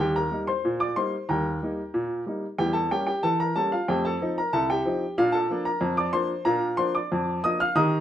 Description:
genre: ragtime piano.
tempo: 93 BPM.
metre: 2/4.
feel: straight.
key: Bb major.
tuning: A4 = 444 Hz.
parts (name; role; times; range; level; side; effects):
warm upright piano; solo; 0.0-8.0 s; C2 to F6; -23 LUFS; equal; none.
room: moderate small room reverb, RT60 0.6 s.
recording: minimal, uncompressed stereo recording.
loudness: -23 LUFS.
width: side -11 dB against mid.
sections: 0.0-8.0 A section.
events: none.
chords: 0.0 Eb; 2.6 Edim7; 3.9 F7; 5.2 Bb.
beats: 0.64 | 1.29 1.94 | 2.59 3.24 | 3.88 4.53 | 5.18 5.83 | 6.48 7.12 | 7.77.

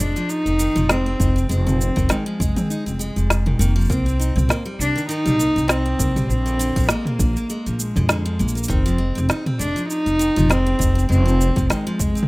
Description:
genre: folktronica.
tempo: 100 BPM.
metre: 4/4.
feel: swing 56% on 16ths.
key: F dorian.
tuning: A4 = 440 Hz.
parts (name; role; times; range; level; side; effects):
warm cello; melody; 0.0-12.3 s; Ab3 to Eb4; -22 LUFS; equal; tape echo.
picked steel-string acoustic guitar; arpeggios; 0.0-12.3 s; D3 to Eb4; -29 LUFS; equal; none.
upright bass; bass; 0.0-12.1 s; F1 to F2; -20 LUFS; equal; none.
organic electronic drum kit; drums; 0.0-12.3 s; cabasa, snare drum, toms; -23 LUFS; equal; overdrive.
electronic kick drum; drums; 1.2-12.1 s; none; -24 LUFS; equal; overdrive.
room: small room ambience.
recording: rough home demo mix.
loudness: -17 LUFS.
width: side -23 dB against mid.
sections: 0.0-12.3 A section.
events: none.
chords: 0.0 Fm7; 3.9 Cm7; 6.3 Bb7; 8.7 Fm7.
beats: 0.30 0.90 | 1.50 2.10 2.70 3.30 | 3.90 4.50 5.10 5.70 | 6.30 6.90 7.50 8.10 | 8.70 9.30 9.90 10.50 | 11.10 11.70.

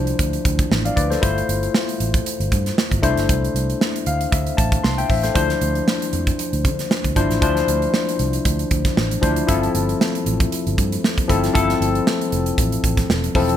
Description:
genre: polished 1980s jazz-funk pop.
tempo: 116 BPM.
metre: 4/4.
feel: swing 54% on 16ths.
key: unclear.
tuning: A4 = 440 Hz.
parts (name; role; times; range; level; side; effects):
barky tine electric piano; accompaniment; 0.0-13.6 s; F3 to C6; -21 LUFS; left 4 dB; analog chorus.
vintage muted fingered electric bass; bass; 0.0-13.5 s; E1 to D3; -23 LUFS; right 1 dB; none.
modern studio drum kit; drums; 0.1-13.6 s; hi-hat, kick drum, snare drum; -21 LUFS; right 2 dB; none.
congas; percussion; 5.4-13.5 s; none; -35 LUFS; right 5 dB; none.
room: light reverb, studio ambience.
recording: bright 1980s-style digital production.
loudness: -17 LUFS.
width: side -10 dB against mid.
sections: 0.0-13.6 A section.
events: tine electric piano fill 3.8-5.4.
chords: 0.0 G13sus4; 3.0 C69; 9.5 G13sus4.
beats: 0.19 0.71 | 1.22 1.74 2.26 2.77 | 3.29 3.81 4.33 4.84 | 5.36 5.88 6.39 6.91 | 7.42 7.94 8.46 8.97 | 9.49 10.01 10.52 11.04 | 11.55 12.07 12.58 13.10.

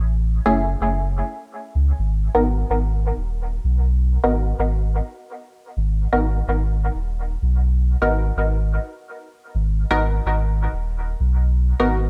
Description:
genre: dub techno.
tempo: 127 BPM.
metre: 4/4.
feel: straight.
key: unclear.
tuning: A4 = 441 Hz.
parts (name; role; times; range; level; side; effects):
warm sub bass; bass; 0.0-12.1 s; D#1 to C#2; -22 LUFS; equal; none.
filtered dub chord stab; stabs; 0.5-12.0 s; A3 to A#4; -25 LUFS; equal; chorus, phaser, dub echo.
room: light reverb, digital ambience.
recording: echo-heavy mix.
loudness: -21 LUFS.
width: mono.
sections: 0.0-12.1 A section.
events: none.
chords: 0.0 F#m7; 2.0 G#m7.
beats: | 0.10 0.57 1.04 1.52 | 1.99 2.46 2.93 3.41 | 3.88 4.35 4.82 5.30 | 5.77 6.24 6.71 7.19 | 7.66 8.13 8.60 9.08 | 9.55 10.02 10.49 10.96 | 11.44 11.91.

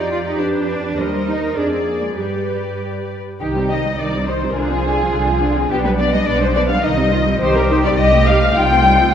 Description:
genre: quick classical-period movement for string orchestra.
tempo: 104 BPM.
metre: 2/4.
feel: rubato.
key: C minor.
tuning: A4 = 440 Hz.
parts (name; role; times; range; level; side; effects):
muted studio violin section; melody; 0.0-9.1 s; G4 to G5; -24 LUFS; left 6 dB; none.
muted studio violin section; second line; 0.0-9.1 s; G4 to G5; -20 LUFS; left 2 dB; none.
muted studio viola section; accompaniment; 0.0-9.1 s; D3 to Bb4; -21 LUFS; equal; none.
muted studio cello section; bass; 0.0-9.1 s; G3 to G4; -23 LUFS; right 2 dB; none.
muted studio double bass section; bass; 0.0-9.1 s; B1 to G2; -21 LUFS; right 2 dB; none.
room: wet scoring stage reverb, RT60 1.7 s.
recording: none.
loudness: -15 LUFS.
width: side -8 dB against mid.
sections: 0.0-3.4 A section; 3.4-9.1 A section.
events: none.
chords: 0.0 G7/F; 1.0 Cm/Eb; 1.6 Ddim/F; 2.2 G; 3.4 Cm; 4.6 Dm7b5/C; 5.7 G/B; 6.8 Cm; 8.0 Am7b5/C.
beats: 0.40 | 0.98 1.57 | 2.18 2.80 | 3.40 3.99 | 4.56 5.14 | 5.71 6.27 | 6.84 7.41 | 7.98 8.55 | 9.12.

